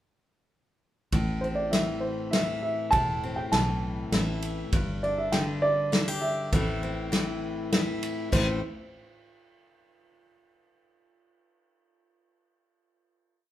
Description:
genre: honky-tonk and classic country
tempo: 100 BPM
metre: 3/4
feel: straight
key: A minor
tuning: A4 = 439 Hz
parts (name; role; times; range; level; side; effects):
- picked steel-string acoustic guitar; accompaniment; 1.1-8.6 s; G2 to G4; -32 LUFS; left 2 dB; none
- fingered electric bass; bass; 1.1-8.6 s; E1 to B1; -33 LUFS; equal; none
- natural country drum kit; drums; 1.1-8.5 s; crash cymbal, kick drum, ride cymbal, snare drum; -28 LUFS; equal; none
- dark upright piano; melody; 1.4-8.6 s; C5 to A5; -28 LUFS; right 1 dB; none
room: wet large studio reverb, RT60 0.9 s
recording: band playing live in one room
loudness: -25 LUFS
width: side -13 dB against mid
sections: 1.1-8.3 interlude; 8.3-10.1 final chord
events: none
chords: 1.1 Am; 4.7 G5; 6.5 Am

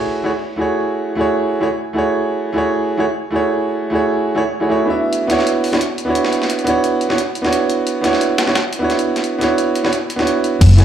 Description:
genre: liquid drum and bass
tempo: 175 BPM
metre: 4/4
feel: swing 53% on 16ths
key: unclear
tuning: A4 = 440 Hz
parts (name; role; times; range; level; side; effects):
- warm grand piano; accompaniment; 0.0-10.8 s; A3 to E5; -16 LUFS; right 2 dB; tape echo
- breakbeat sampler-style drum kit; drums; 5.1-10.8 s; hi-hat, snare drum; -22 LUFS; left 1 dB; high-pass filter on hats, high-pass filter on snare, high-pass filter on room
- upright bass; bass; 10.6-10.8 s; F#1; -7 LUFS; equal; none
- electronic kick drum; drums; 10.6-10.7 s; none; -12 LUFS; equal; none
- pop drum kit; drums; 10.6-10.8 s; crash cymbal, hi-hat, tambourine; -30 LUFS; left 1 dB; none
room: moderate plate reverb, RT60 0.9 s, digital ambience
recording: played on a big sound system in a bare room, large studio reverb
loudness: -15 LUFS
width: side -10 dB against mid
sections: 0.0-10.6 A section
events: none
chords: 0.0 F#m9; 5.0 Dmaj13

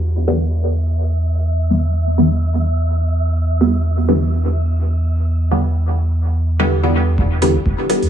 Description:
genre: dub techno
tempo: 126 BPM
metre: 4/4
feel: swing 55% on 16ths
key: E minor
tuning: A4 = 436 Hz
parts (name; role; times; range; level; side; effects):
- warm sub bass; bass; 0.0-8.1 s; E1 to E2; -16 LUFS; equal; tube saturation, sidechain pumping
- wind-like tuned noise texture; texture; 0.4-7.2 s; E5; -30 LUFS; right 1 dB; built-in reverb, sidechain pumping
- filtered dub chord stab; stabs; 0.3-8.0 s; D3 to B3; -18 LUFS; equal; phaser, vintage 12-bit sampler grit, sidechain pumping, dub echo
- electronic kick drum; drums; 7.2-7.8 s; none; -19 LUFS; equal; none
- electronic hi-hat; drums; 7.4-8.1 s; none; -28 LUFS; right 4 dB; low-pass filter on hats, low-pass filter on perc, low-pass filter on room
room: digital ambience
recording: echo-heavy mix, low-pass filter, small room ambience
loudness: -15 LUFS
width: side -9 dB against mid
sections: 0.0-7.2 A section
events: filter sweep on synth stab 0.0-7.2; filter sweep 0.0-7.2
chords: 0.0 Em7

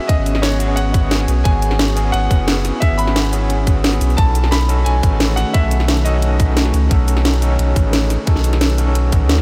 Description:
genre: liquid drum and bass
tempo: 176 BPM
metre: 4/4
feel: straight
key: E major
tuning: A4 = 440 Hz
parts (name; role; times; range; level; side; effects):
- bright concert grand piano; melody; 0.0-9.2 s; C#5 to B5; -26 LUFS; equal; analog delay
- overdriven tine electric piano; accompaniment; 0.0-9.4 s; D#3 to C#5; -26 LUFS; equal; fast tremolo, analog delay
- glassy FM pad; sustained chords; 0.0-9.4 s; D#3 to G#4; -30 LUFS; equal; ensemble chorus, built-in reverb, sidechain pumping
- drum and bass drum kit; drums; 0.1-9.4 s; hi-hat, shaker, snare drum; -24 LUFS; equal; overdrive, small room ambience
- electronic kick drum; drums; 0.1-9.2 s; none; -17 LUFS; equal; overdrive, small room ambience
- warm sub bass; bass; 0.2-9.4 s; F#1 to D#2; -19 LUFS; equal; none
room: moderate huge ambient reverb, RT60 7.6 s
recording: dreamy mix soaked in reverb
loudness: -16 LUFS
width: mono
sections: 0.0-9.4 A section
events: none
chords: 0.0 E69; 4.2 B9

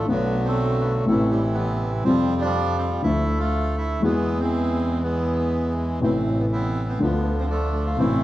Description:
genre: tango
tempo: 121 BPM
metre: 4/4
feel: rubato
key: A minor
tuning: A4 = 440 Hz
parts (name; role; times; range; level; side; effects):
- bandoneon; melody; 0.0-8.2 s; C3 to F4; -25 LUFS; right 2 dB; none
- dark upright piano; accompaniment; 0.0-8.2 s; A1 to E5; -24 LUFS; left 2 dB; none
- rich double bass; bass; 0.0-8.2 s; A1 to F2; -25 LUFS; equal; none
room: moderate large studio reverb, RT60 1.4 s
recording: dark, warm production, vinyl crackle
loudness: -20 LUFS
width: side -15 dB against mid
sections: 0.0-8.2 A section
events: none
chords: 0.1 Bm7; 1.1 Amadd9; 2.1 Fsus2; 3.1 Dmadd9; 4.0 E; 6.0 Amadd9; 7.0 Dm

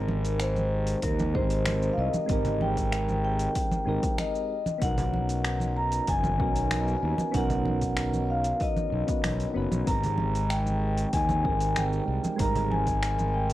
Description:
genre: sunset chillout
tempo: 95 BPM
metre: 4/4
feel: straight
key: unclear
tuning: A4 = 438 Hz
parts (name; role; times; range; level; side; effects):
- vibraphone with medium mallets; melody; 0.0-13.5 s; Bb4 to A#5; -30 LUFS; left 2 dB; ping-pong delay
- soft electric-piano-like synth keys; accompaniment; 0.0-13.5 s; G3 to B4; -32 LUFS; moving between left 3 dB and right 5 dB; chorus, auto-pan
- fuzz fingered electric bass; bass; 0.0-13.5 s; F#1 to Eb2; -28 LUFS; equal; overdrive, tube saturation
- congas; percussion; 0.1-13.3 s; none; -34 LUFS; right 1 dB; none
- deep house drum kit; drums; 0.2-13.5 s; finger snaps, hi-hat, shaker; -36 LUFS; equal; overdrive
- electronic kick drum; drums; 1.0-13.0 s; none; -31 LUFS; equal; overdrive
room: light reverb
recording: worn, warbling old tape, cassette tape, warbly pitch drift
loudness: -24 LUFS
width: side -15 dB against mid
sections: 0.0-13.5 A section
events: none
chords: 0.0 Abmaj9; 4.5 Bmaj9; 9.9 Abmaj9

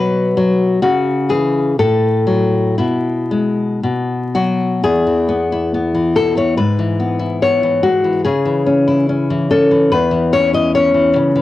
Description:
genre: romantic piece for solo classical guitar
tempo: 56-75 BPM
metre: 2/4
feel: rubato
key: E major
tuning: A4 = 442 Hz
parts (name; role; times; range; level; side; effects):
- nylon-string guitar; solo; 0.0-11.4 s; E2 to D#5; -13 LUFS; left 2 dB; cassette tape
room: wet small room ambience, RT60 0.5 s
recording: home recording on cassette, vinyl crackle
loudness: -13 LUFS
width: side -15 dB against mid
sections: 0.0-4.8 A section; 4.8-11.4 B section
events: none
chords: 0.0 B5; 0.8 C#m; 1.8 F#m/A; 2.8 E/B; 3.8 B5; 4.8 E; 6.6 E/G#; 8.2 C#m; 9.9 C#m/E

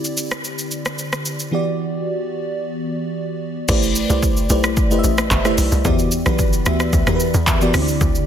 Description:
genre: amapiano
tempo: 111 BPM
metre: 4/4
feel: straight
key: E minor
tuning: A4 = 440 Hz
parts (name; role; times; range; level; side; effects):
- FM electric piano with soft pad layer; accompaniment; 0.0-8.3 s; D3 to E5; -20 LUFS; equal; chorus, low-pass filter
- deep house drum kit; drums; 0.0-8.3 s; crash cymbal, handclaps, hi-hat, kick drum, rim click, shaker; -20 LUFS; equal; overdrive
- tight log drum bass; bass; 3.7-8.3 s; G1 to E2; -21 LUFS; equal; none
room: light reverb, digital ambience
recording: dense, heavily limited modern master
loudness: -16 LUFS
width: side -9 dB against mid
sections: 0.0-3.7 A section; 3.7-8.3 B section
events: drop 3.7-8.3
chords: 0.0 D9sus4; 1.5 Em7; 3.7 Am11; 5.8 Em7; 7.7 D9sus4

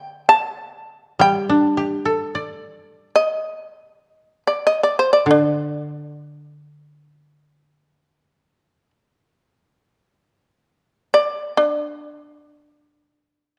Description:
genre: japanese traditional, Japanese chamber music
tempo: free time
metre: none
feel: none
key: unclear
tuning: A4 = 443 Hz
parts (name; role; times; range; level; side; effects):
- shamisen; melody; 0.0-13.6 s; D4 to A5; -18 LUFS; equal; none
- koto; accompaniment; 0.0-8.6 s; D3 to D5; -22 LUFS; equal; none
room: moderate recital hall reverb, RT60 1.5 s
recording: dark, warm production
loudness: -19 LUFS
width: mono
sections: 0.0-13.6 A section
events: none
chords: none

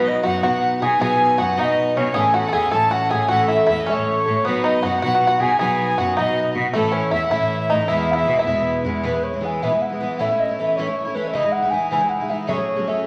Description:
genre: celtic folk, Celtic jig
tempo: 105 BPM (dotted quarters)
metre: 6/8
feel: straight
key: E major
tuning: A4 = 439 Hz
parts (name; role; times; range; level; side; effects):
- mellow baroque flute; melody; 0.0-13.1 s; A4 to A5; -23 LUFS; equal; none
- bluegrass banjo; second line; 0.0-8.6 s; A3 to A4; -27 LUFS; equal; none
- clear fiddle; second line; 0.0-8.6 s; A4 to A5; -30 LUFS; equal; none
- picked twelve-string acoustic guitar; accompaniment; 0.0-13.1 s; E2 to A4; -26 LUFS; equal; none
- warm cello; bass; 0.0-9.0 s; E2 to B2; -30 LUFS; equal; none
room: wet large studio reverb, RT60 1.4 s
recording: vinyl crackle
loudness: -20 LUFS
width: mono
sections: 0.0-9.0 A section; 9.0-13.1 B section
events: none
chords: 0.0 B; 2.2 A; 4.5 B; 6.7 A; 7.9 E; 10.2 A; 11.3 C#madd9; 12.5 F#madd9

